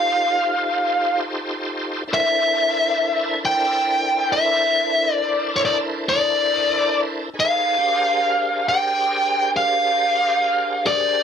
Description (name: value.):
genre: blues.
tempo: 46 BPM (dotted quarters).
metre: 12/8.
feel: straight.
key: unclear.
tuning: A4 = 440 Hz.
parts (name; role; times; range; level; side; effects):
biting lead guitar; melody; 0.0-11.2 s; Db5 to G5; -18 LUFS; equal; overdrive.
bright tonewheel organ; sustained chords; 0.0-11.2 s; D4 to Db5; -26 LUFS; equal; slow rotary speaker, chorus vibrato.
room: moderate club reverb, RT60 0.6 s.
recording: none.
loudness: -17 LUFS.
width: side -7 dB against mid.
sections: 0.0-11.2 A section.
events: none.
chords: 0.0 F9; 2.1 C13; 7.3 Bb13.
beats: 0.78 | 2.09 3.40 4.71 6.03 | 7.34 8.65 9.96.